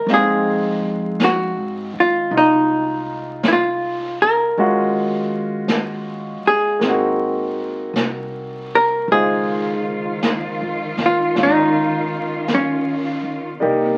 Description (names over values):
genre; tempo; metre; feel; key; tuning
jazz; 53 BPM; 4/4; swing 66% on 8ths; unclear; A4 = 440 Hz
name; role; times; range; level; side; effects
hollow-body jazz guitar; melody; 0.0-13.4 s; Db4 to Bb4; -20 LUFS; equal; none
clear concert grand piano; accompaniment; 0.0-14.0 s; Ab3 to F5; -25 LUFS; equal; none
upright bass; bass; 0.0-14.0 s; Ab1 to Ab2; -36 LUFS; equal; none
jazz brush drum kit; drums; 0.1-14.0 s; brushed snare drum, hi-hat, snare drum; -25 LUFS; equal; none
rich symphonic cello section; sustained chords; 9.1-14.0 s; C3 to F4; -27 LUFS; equal; none
room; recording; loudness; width
moderate studio reverb, RT60 0.8 s; very old 78 rpm record, vinyl crackle; -19 LUFS; mono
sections
0.0-14.0 A section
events
none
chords
0.1 Fm7; 4.6 Ebm11; 6.8 Ab9; 9.1 Dbmaj9